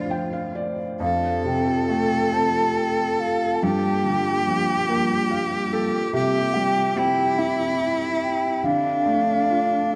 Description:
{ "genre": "celtic folk, Celtic slow air", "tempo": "47 BPM (dotted quarters)", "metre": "6/8", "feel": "uneven beats, rubato", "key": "G minor", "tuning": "A4 = 440 Hz", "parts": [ { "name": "mellow hollow wooden flute", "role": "melody", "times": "0.0-9.9 s", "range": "E5 to A5", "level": "-27 LUFS", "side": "equal", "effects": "none" }, { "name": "bright cello", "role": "second line", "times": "0.0-10.0 s", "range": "D4 to A4", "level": "-28 LUFS", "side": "equal", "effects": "none" }, { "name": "felt-muted upright piano", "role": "accompaniment", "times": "0.0-10.0 s", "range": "D2 to G5", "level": "-28 LUFS", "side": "equal", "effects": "none" }, { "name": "glass harmonica", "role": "sustained chords", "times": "0.0-10.0 s", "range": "G3 to F5", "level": "-31 LUFS", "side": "equal", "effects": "none" } ], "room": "wet cathedral reverb, RT60 4.8 s", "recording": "dark, warm production", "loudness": "-22 LUFS", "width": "mono", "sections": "0.0-10.0 A section", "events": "felt piano fill 0.0-1.0, 4.9-6.1", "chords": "0.0 Dm7; 1.0 Fadd9; 3.6 Gm7; 6.1 C; 8.6 Dm" }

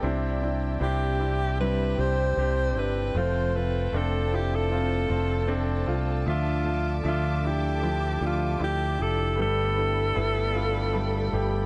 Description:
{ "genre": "pop ballad", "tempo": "77 BPM", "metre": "4/4", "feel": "straight", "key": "C major", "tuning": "A4 = 441 Hz", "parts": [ { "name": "clear concert grand piano", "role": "accompaniment", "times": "0.0-11.7 s", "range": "G2 to E5", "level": "-33 LUFS", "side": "equal", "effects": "none" }, { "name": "warm studio string section", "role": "sustained chords", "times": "0.0-11.7 s", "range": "C4 to D6", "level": "-41 LUFS", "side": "equal", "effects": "none" }, { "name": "nylon-string guitar", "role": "arpeggios", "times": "0.0-11.7 s", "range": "G2 to A4", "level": "-38 LUFS", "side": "equal", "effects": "none" }, { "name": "fingered electric bass", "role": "bass", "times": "0.0-11.7 s", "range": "F1 to D2", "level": "-30 LUFS", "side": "equal", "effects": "none" }, { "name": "bright alto saxophone", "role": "melody", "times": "0.8-11.7 s", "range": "F4 to C5", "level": "-31 LUFS", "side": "equal", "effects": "none" } ], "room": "light reverb, studio reverb", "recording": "nothing above 10.9 kHz", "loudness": "-26 LUFS", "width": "mono", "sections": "0.0-11.7 A section", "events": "none", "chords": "0.0 Cadd9; 3.1 F; 6.3 Dmadd9; 9.4 Gadd9" }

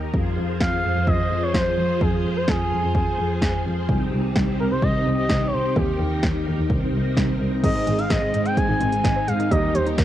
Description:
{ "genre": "synth-pop", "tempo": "128 BPM", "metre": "4/4", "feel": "straight", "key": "F minor", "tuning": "A4 = 440 Hz", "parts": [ { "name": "string machine, full ensemble", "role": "sustained chords", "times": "0.0-10.0 s", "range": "C3 to C5", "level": "-26 LUFS", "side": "equal", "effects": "ensemble chorus" }, { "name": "dark double bass", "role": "bass", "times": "0.1-10.0 s", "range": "Ab1 to F3", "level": "-24 LUFS", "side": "equal", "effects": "none" }, { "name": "deep house drum kit", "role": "drums", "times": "0.1-10.0 s", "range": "crash cymbal, hi-hat, kick drum, snare drum", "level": "-24 LUFS", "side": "equal", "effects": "cassette tape" }, { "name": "expressive portamento lead", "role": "melody", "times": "0.6-10.0 s", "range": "G4 to Ab5", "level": "-25 LUFS", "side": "equal", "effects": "chorus, analog delay" }, { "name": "warm analog keys", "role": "accompaniment", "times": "7.6-10.0 s", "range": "G3 to Ab4", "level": "-28 LUFS", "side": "right 2 dB", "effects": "chorus" }, { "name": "warbly dusty pluck", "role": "arpeggios", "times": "7.6-10.0 s", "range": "Ab3 to Eb5", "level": "-29 LUFS", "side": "left 2 dB", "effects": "chorus, analog delay" } ], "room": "light reverb", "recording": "home recording on cassette", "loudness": "-19 LUFS", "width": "side -12 dB against mid", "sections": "0.0-7.6 A section; 7.6-10.0 B section", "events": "none", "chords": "0.1 Fm; 3.9 Cm; 5.8 Eb; 6.7 Cm7; 7.6 Ab; 9.5 Eb" }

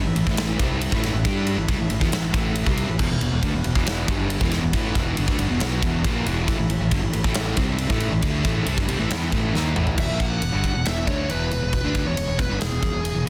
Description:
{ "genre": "hard rock", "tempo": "137 BPM", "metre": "4/4", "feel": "straight", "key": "unclear", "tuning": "A4 = 439 Hz", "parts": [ { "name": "overdriven tonewheel organ", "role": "sustained chords", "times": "0.0-9.9 s", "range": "E3 to B4", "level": "-40 LUFS", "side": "equal", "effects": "none" }, { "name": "overdriven semi-hollow guitar", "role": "riff", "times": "0.0-13.3 s", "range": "E2 to G4", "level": "-32 LUFS", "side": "equal", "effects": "none" }, { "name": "sludgy distorted guitar", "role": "riff", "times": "0.0-13.3 s", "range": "E2 to G4", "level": "-29 LUFS", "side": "equal", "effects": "overdrive" }, { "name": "fingered electric bass", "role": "bass", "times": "0.0-13.3 s", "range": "E1 to G2", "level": "-29 LUFS", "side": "equal", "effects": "none" }, { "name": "big rock drum kit", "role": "drums", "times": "0.2-13.2 s", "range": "crash cymbal, kick drum, ride cymbal, snare drum, toms", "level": "-27 LUFS", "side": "equal", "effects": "none" }, { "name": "bluesy overdriven lead guitar", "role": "melody", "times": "10.0-13.2 s", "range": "G#4 to F#5", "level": "-30 LUFS", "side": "equal", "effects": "distortion, plate reverb" } ], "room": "little or no reverb", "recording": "dense, heavily limited modern master", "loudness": "-23 LUFS", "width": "mono", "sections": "0.0-10.0 A section; 10.0-13.3 B section", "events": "drum fill 9.5-10.0", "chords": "0.0 A5; 3.0 E5; 6.5 A5; 10.0 E5" }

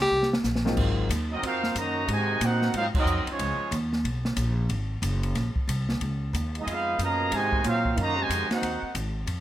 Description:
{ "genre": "jazz, big band swing", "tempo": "184 BPM", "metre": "4/4", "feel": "swing 63% on 8ths", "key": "Ab major", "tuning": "A4 = 439 Hz", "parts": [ { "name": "upright bass", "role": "bass", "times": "0.0-9.4 s", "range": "Gb1 to Bb2", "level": "-28 LUFS", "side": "equal", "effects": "none" }, { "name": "open jazz drum kit", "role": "drums", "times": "0.2-9.4 s", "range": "crash cymbal, hi-hat, kick drum, ride cymbal, snare drum", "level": "-31 LUFS", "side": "equal", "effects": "none" }, { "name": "warm concert grand piano", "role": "accompaniment", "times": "0.6-1.1 s", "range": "Ab2 to F4", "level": "-30 LUFS", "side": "left 4 dB", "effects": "none" }, { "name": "clear trumpet section", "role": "melody", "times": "1.3-3.7, 6.6-8.9 s", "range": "Cb4 to Bb5", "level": "-27 LUFS", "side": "right 1 dB", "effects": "none" }, { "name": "mellow trombone section", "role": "second line", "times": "1.3-3.7, 6.6-8.9 s", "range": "Cb3 to Gb4", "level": "-32 LUFS", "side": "right 4 dB", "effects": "none" } ], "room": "light reverb", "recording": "none", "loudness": "-24 LUFS", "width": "side -13 dB against mid", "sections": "0.8-9.4 A section", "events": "drum fill 0.1-0.8; band accent 2.9", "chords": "0.0 Eb13; 0.8 Ab13; 3.4 Db13; 4.7 Ab9; 6.0 Db13; 7.3 Ab13" }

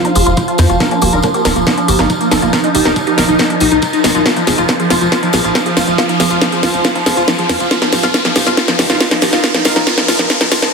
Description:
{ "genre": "psychedelic trance", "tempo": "139 BPM", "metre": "4/4", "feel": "straight", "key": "unclear", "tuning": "A4 = 438 Hz", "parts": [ { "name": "overtone-sweeping drone", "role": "sustained chords", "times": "0.0-10.7 s", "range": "F3", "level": "-18 LUFS", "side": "right 3 dB", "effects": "chorus, built-in reverb, sidechain pumping" }, { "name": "woody wave-folded pluck", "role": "riff", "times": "0.0-10.7 s", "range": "D4 to Ab4", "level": "-22 LUFS", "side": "moving between left 6 dB and right 6 dB", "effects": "chorus, auto-pan, sidechain pumping, dub echo" }, { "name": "drum and bass drum kit", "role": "drums", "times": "0.0-10.7 s", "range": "hi-hat, snare drum", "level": "-15 LUFS", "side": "equal", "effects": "soft clipping on snare" }, { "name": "tambourine", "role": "percussion", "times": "0.0-10.7 s", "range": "none", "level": "-24 LUFS", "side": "left 4 dB", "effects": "none" }, { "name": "riser", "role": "sound effects", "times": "1.3-10.7 s", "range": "none", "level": "-22 LUFS", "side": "equal", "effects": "none" }, { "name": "granular cloud pad", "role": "texture", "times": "0.0-10.7 s", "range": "Eb4 to C6", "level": "-22 LUFS", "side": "right 1 dB", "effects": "built-in reverb, sidechain pumping" }, { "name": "supersaw stab", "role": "melody", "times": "0.2-10.7 s", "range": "F3 to C5", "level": "-18 LUFS", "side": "left 1 dB", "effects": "phaser, sidechain pumping, low-pass filter, ping-pong delay" }, { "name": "tight sequencer bass", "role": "bass", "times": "0.2-10.7 s", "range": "Eb1 to F2", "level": "-19 LUFS", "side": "equal", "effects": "none" }, { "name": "electronic kick drum", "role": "drums", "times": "0.4-10.4 s", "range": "none", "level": "-22 LUFS", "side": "equal", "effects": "high-pass filter on kick, high-pass filter on room" } ], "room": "moderate plate reverb, RT60 1.0 s, digital ambience", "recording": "dense, heavily limited modern master, high-pass filter", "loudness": "-10 LUFS", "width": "side -4 dB against mid", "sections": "0.0-10.7 A section", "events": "build-up 0.0-10.7; drum fill 0.0-10.7; filter sweep on synth arpeggio sound 0.0-10.7; filter sweep on supersaw synth 0.0-10.7; filter sweep 0.0-10.7; riser 1.3-10.7", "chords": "0.0 F5; 0.8 Eb5; 4.3 F5; 7.7 Eb5" }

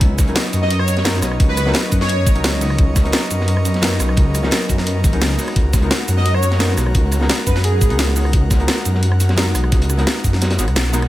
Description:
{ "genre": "liquid drum and bass", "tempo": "173 BPM", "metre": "4/4", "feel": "straight", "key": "unclear", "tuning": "A4 = 440 Hz", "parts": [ { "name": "archtop guitar, miked and amplified", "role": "accompaniment", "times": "0.0-11.0 s", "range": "F#3 to C#5", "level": "-24 LUFS", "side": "left 1 dB", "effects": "tape echo" }, { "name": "airy breathy pad", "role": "sustained chords", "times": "0.0-11.1 s", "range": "A#4 to C#6", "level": "-28 LUFS", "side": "equal", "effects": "chorus, sidechain pumping" }, { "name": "dark detuned saw bass", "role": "bass", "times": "0.0-11.1 s", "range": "G#1 to F#2", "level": "-18 LUFS", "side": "equal", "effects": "tube saturation" }, { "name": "crunchy breakbeat drum kit", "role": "drums", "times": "0.0-11.1 s", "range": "hi-hat, snare drum", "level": "-27 LUFS", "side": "equal", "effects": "high-pass filter on hats, studio reverb, high-pass filter on snare, high-pass filter on room, dub echo" }, { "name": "drum and bass drum kit", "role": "drums", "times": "0.0-11.1 s", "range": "cabasa, hi-hat, rim click, snare drum", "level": "-21 LUFS", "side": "equal", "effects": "studio reverb" }, { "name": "electronic kick drum", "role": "drums", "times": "0.0-10.3 s", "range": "none", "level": "-15 LUFS", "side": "equal", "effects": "studio reverb" }, { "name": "airy dreamy lead", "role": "melody", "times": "0.6-2.3, 6.2-8.0 s", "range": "G#4 to D#5", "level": "-24 LUFS", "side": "equal", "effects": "chorus, tape echo" } ], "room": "light reverb, digital ambience", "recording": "echo-heavy mix", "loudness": "-14 LUFS", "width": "side -15 dB against mid", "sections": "0.0-11.1 A section", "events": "kick drops out 10.4-11.1; band accent 10.8", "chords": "0.0 G#m9" }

